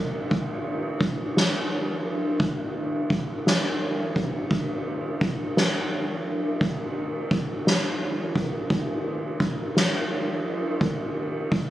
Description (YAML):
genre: pop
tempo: 57 BPM (dotted quarters)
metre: 6/8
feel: straight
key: none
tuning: none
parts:
  - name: soft-mallet drum kit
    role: drums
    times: 0.3-11.7 s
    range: kick drum, ride cymbal, snare drum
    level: -24 LUFS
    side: equal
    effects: none
room: moderate studio ambience, RT60 0.5 s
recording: recorded on a phone in the room, club reverb, compression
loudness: -23 LUFS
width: side -14 dB against mid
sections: 0.0-11.7 A section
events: none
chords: none